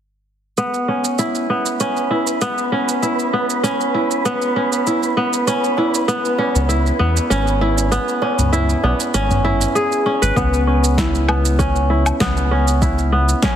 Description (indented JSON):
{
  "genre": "organic downtempo",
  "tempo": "98 BPM",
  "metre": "4/4",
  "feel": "swing 53% on 16ths",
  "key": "C# minor",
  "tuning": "A4 = 438 Hz",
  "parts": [
    { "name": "kora", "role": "arpeggios", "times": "0.6-13.6 s", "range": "B3 to B4", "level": "-18 LUFS", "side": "equal", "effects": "low-pass filter, tape echo" },
    { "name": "electronic shaker, snare drum and woodblock", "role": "drums", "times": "0.6-13.6 s", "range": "none", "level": "-23 LUFS", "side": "right 2 dB", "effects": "overdrive" },
    { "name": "wind-like tuned noise texture", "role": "texture", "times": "1.4-10.4 s", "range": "B4", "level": "-26 LUFS", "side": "right 2 dB", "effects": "built-in reverb" },
    { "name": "tabla", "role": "percussion", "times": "5.8-10.2 s", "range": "none", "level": "-27 LUFS", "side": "right 1 dB", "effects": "none" },
    { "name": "round analog bass", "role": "bass", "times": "6.6-13.3 s", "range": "G#1 to E2", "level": "-18 LUFS", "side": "equal", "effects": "tube saturation" },
    { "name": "electronic kick drum", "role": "drums", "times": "10.4-13.6 s", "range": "none", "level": "-21 LUFS", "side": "equal", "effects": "overdrive" }
  ],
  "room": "moderate lush hall reverb, RT60 2.7 s",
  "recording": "heavily compressed radio sound",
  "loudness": "-15 LUFS",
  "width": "side -9 dB against mid",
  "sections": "0.6-10.4 A section; 10.4-13.6 B section",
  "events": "none",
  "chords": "0.6 C#m7"
}